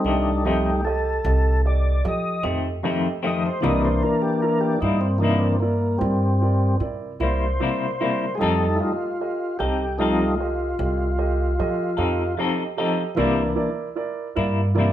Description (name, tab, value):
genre	slow blues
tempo	50 BPM (dotted quarters)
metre	12/8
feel	straight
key	unclear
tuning	A4 = 442 Hz
part	tonewheel organ	sustained chords	0.0-14.9 s	E3 to Eb5	-23 LUFS	left 1 dB	chorus vibrato
part	upright bass	bass	0.0-14.9 s	C2 to F3	-23 LUFS	equal	none
part	semi-hollow electric guitar	accompaniment	0.1-14.9 s	F2 to A4	-25 LUFS	left 4 dB	tremolo
part	warm grand piano	accompaniment	0.1-14.9 s	E4 to Eb5	-28 LUFS	right 6 dB	none
room	moderate large studio reverb, RT60 0.8 s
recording	band playing live in one room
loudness	-20 LUFS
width	side -12 dB against mid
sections	0.0-14.9 A section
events	tonewheel organ solo 0.0-14.9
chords	0.0 F7; 3.6 C7; 8.4 F7; 13.2 C7